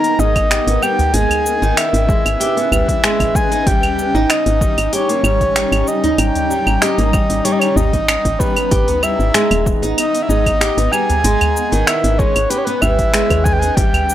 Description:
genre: organic downtempo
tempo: 95 BPM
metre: 4/4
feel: straight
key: unclear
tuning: A4 = 440 Hz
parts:
  - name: breathy flute-like synth lead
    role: melody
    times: 0.0-14.1 s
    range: B4 to A#5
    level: -18 LUFS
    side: equal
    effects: chorus, tape echo
  - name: granular cloud pad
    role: sustained chords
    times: 0.0-14.1 s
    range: G3 to A#5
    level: -23 LUFS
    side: left 1 dB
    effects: built-in reverb, sidechain pumping
  - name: flamenco guitar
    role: arpeggios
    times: 0.0-14.1 s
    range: D#3 to G4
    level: -20 LUFS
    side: equal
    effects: analog delay
  - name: afro-pop drum kit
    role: drums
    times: 0.0-14.1 s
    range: claves, finger snaps, hi-hat, shaker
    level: -19 LUFS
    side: right 1 dB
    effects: none
  - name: woody FM bass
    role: bass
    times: 0.2-13.9 s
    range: D#1 to D#2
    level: -18 LUFS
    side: equal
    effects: sidechain pumping
  - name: electronic kick drum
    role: drums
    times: 0.4-13.9 s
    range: none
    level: -19 LUFS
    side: equal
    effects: none
  - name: udu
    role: percussion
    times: 1.0-14.1 s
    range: none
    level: -22 LUFS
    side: equal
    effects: none
room: little or no reverb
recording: dry, gritty hardware recording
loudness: -13 LUFS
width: side -12 dB against mid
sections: 0.0-14.1 A section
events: none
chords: 0.0 G#madd9; 1.1 C#m7/G#; 3.7 D#7/G#; 8.7 G#madd9; 11.2 C#m7/G#

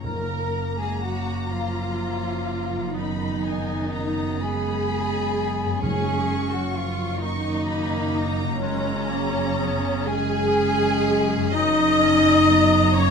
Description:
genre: cinematic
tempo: 42 BPM (dotted quarters)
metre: 6/8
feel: rubato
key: F# major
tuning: A4 = 440 Hz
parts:
  - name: rich studio violin section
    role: melody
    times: 0.0-13.1 s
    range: G#5 to C#6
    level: -34 LUFS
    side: left 2 dB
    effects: none
  - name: bright clarinet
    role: second line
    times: 0.0-13.1 s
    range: G#3 to D#4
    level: -31 LUFS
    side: equal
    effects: none
  - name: hollow small flute group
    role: second line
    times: 0.0-13.1 s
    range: C#5 to D#6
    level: -29 LUFS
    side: left 3 dB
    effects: none
  - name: rich studio violin section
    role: second line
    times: 0.0-13.1 s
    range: C#4 to D#5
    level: -30 LUFS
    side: left 1 dB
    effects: none
  - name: clear studio viola section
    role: accompaniment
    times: 0.0-13.1 s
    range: C#4 to D#5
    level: -28 LUFS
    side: right 1 dB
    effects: none
  - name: dark French horn section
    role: sustained chords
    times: 0.0-13.1 s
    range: C#3 to D#4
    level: -26 LUFS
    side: left 2 dB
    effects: none
  - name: concert harp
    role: arpeggios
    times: 0.0-13.1 s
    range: F#2 to C#5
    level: -35 LUFS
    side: left 15 dB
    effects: none
  - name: rich studio cello section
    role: bass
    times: 0.0-13.1 s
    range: F#2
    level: -30 LUFS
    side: right 4 dB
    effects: none
  - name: rich studio double bass section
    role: bass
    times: 0.0-13.1 s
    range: F#1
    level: -30 LUFS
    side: right 6 dB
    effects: none
  - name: timpani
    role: percussion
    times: 0.0-1.5, 5.8-7.2 s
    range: F#2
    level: -33 LUFS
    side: right 1 dB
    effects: none
room: moderate scoring stage reverb, RT60 1.7 s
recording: close, detailed microphones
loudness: -20 LUFS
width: side -6 dB against mid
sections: 0.0-13.1 A section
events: none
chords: 0.0 F#; 2.9 G#m/F#; 5.8 F#; 8.6 C#/F#; 11.6 F#

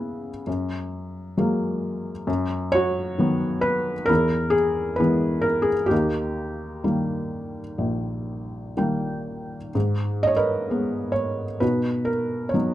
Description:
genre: classical, lyrical solo piano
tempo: 65 BPM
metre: 4/4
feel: rubato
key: unclear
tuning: A4 = 436 Hz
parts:
  - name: felt-muted upright piano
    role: solo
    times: 0.0-12.7 s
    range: A#1 to G5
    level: -22 LUFS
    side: equal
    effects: none
room: moderate studio ambience, RT60 0.5 s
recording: dark, warm production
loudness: -22 LUFS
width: side -14 dB against mid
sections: 0.0-12.7 A section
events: felt piano fill 8.3-9.7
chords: 0.5 F#add9; 2.3 B/F#; 4.1 E; 5.9 D#; 9.7 G#madd9; 11.6 B

